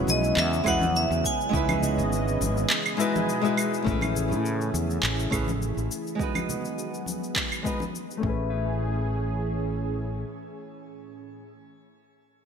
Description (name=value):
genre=sunset chillout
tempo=103 BPM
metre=4/4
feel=swing 53% on 16ths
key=A lydian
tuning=A4 = 440 Hz
part: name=nylon-string guitar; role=accompaniment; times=0.0-11.5 s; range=G#3 to B4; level=-30 LUFS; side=moving between left 5 dB and right 8 dB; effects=auto-pan, low-pass filter, digital delay, shimmer reverb
part: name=lush unison pad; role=sustained chords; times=0.0-11.4 s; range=A2 to D#5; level=-32 LUFS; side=right 1 dB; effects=chorus, shimmer reverb
part: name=fretless electric bass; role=bass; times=0.0-10.2 s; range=G#1 to A2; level=-28 LUFS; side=equal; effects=none
part: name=vibraphone with hard mallets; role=melody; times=0.1-2.4 s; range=D#5 to G#5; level=-28 LUFS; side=equal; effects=digital delay, shimmer reverb
part: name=electronic cabasa, handclaps and claves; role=drums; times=0.1-8.2 s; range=none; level=-30 LUFS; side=equal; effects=overdrive, studio reverb
part: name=congas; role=percussion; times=0.1-7.9 s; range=none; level=-35 LUFS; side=left 3 dB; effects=none
part: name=electronic kick drum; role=drums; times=0.7-8.4 s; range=none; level=-32 LUFS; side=equal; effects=overdrive, studio reverb
room=moderate lush hall reverb, RT60 1.8 s, small room ambience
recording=bright 1980s-style digital production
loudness=-24 LUFS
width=side -7 dB against mid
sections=0.0-3.9 A section; 3.9-8.5 B section; 8.5-10.9 C section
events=filter sweep on nylon-string guitar 3.9-8.5; filter sweep on analog synth pad 3.9-8.5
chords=0.0 E69; 1.5 C#m9; 2.7 Emaj7; 3.9 Amaj7; 6.2 G#m7; 8.2 Amaj7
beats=0.37 0.95 | 1.53 2.12 2.70 3.28 | 3.86 4.45 5.03 5.61 | 6.19 6.78 7.36 7.94 | 8.52 9.11 9.69 10.27